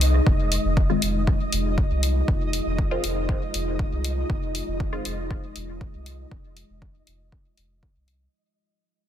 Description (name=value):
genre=dub techno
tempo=119 BPM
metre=4/4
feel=straight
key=F minor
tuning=A4 = 440 Hz
part: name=deep dark ambient pad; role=sustained chords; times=0.0-8.3 s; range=Ab3 to Ab4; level=-31 LUFS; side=left 1 dB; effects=chorus, built-in reverb, sidechain pumping
part: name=soft dub sub bass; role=bass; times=0.0-8.3 s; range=F1 to C2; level=-26 LUFS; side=equal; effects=sidechain pumping
part: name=electronic hi-hat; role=drums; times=0.0-8.2 s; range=none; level=-29 LUFS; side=left 2 dB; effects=dub echo
part: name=flickering grainy texture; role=texture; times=0.0-8.3 s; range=Eb5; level=-34 LUFS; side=right 2 dB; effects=built-in reverb, sidechain pumping
part: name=electronic kick drum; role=drums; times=0.3-7.9 s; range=none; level=-24 LUFS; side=equal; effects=none
part: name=filtered dub chord stab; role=stabs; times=0.9-5.1 s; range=Eb3 to F4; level=-30 LUFS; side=left 2 dB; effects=phaser, sidechain pumping, dub echo
room=light reverb, digital ambience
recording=dense, heavily limited modern master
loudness=-22 LUFS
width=side -10 dB against mid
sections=0.3-8.3 A section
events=fade-out 0.3-8.3; filter sweep on sub bass 0.3-8.3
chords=0.3 Fm7